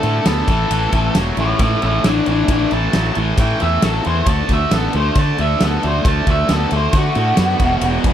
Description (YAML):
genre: classic rock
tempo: 135 BPM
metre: 4/4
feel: straight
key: unclear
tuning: A4 = 440 Hz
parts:
  - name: octave-fuzz lead guitar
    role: melody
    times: 0.0-7.8 s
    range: F#4 to A5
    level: -20 LUFS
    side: equal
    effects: distortion, tape echo
  - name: tight distorted guitar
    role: riff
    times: 0.0-8.1 s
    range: E2 to B3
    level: -20 LUFS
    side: equal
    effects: distortion
  - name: fuzz fingered electric bass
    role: bass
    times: 0.0-8.1 s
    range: E1 to D3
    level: -19 LUFS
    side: equal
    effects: overdrive
  - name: big rock drum kit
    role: drums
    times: 0.0-8.1 s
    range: kick drum, ride cymbal, snare drum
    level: -20 LUFS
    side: equal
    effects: none
room: little or no reverb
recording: dry, close 1970s-style studio recording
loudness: -14 LUFS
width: side -10 dB against mid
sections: 0.0-8.1 A section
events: lead electric guitar solo 0.0-8.1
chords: 0.5 A5; 4.3 D5; 7.6 E5